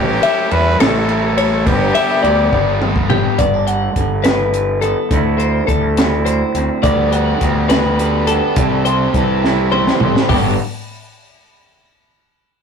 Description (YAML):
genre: math rock and midwest emo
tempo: 69 BPM (dotted quarters)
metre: 6/8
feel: straight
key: G major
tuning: A4 = 440 Hz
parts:
  - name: clear trumpet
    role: melody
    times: 0.0-2.8 s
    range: G4 to B4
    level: -20 LUFS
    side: right 1 dB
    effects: none
  - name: overdriven electric guitar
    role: riff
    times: 0.0-3.4, 6.8-10.5 s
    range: G2 to G4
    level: -21 LUFS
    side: equal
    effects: none
  - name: fuzz fingered electric bass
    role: bass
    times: 0.0-10.6 s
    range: G1 to E2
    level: -18 LUFS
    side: equal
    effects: overdrive
  - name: twelve-string electric guitar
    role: arpeggios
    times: 0.2-10.6 s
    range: G4 to F#5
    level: -18 LUFS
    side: left 4 dB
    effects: none
  - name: compact cocktail drum kit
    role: drums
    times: 0.2-10.4 s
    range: hi-hat, kick drum, ride cymbal, snare drum, toms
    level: -18 LUFS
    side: equal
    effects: none
  - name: electric guitar through a small old amp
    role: accompaniment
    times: 3.4-10.6 s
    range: G2 to F#4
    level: -21 LUFS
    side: right 5 dB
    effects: none
room: moderate studio reverb, RT60 0.5 s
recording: rough rehearsal-room recording, tube saturation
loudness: -13 LUFS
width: side -6 dB against mid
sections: 0.0-3.4 A section; 3.4-10.3 B section; 10.3-12.0 C section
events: drum fill 2.5-3.4, 9.4-10.3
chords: 0.0 A7; 1.7 G; 3.4 Gmaj9; 5.1 D9sus4; 6.8 Gmaj9/D; 8.6 C69; 10.3 Gmaj7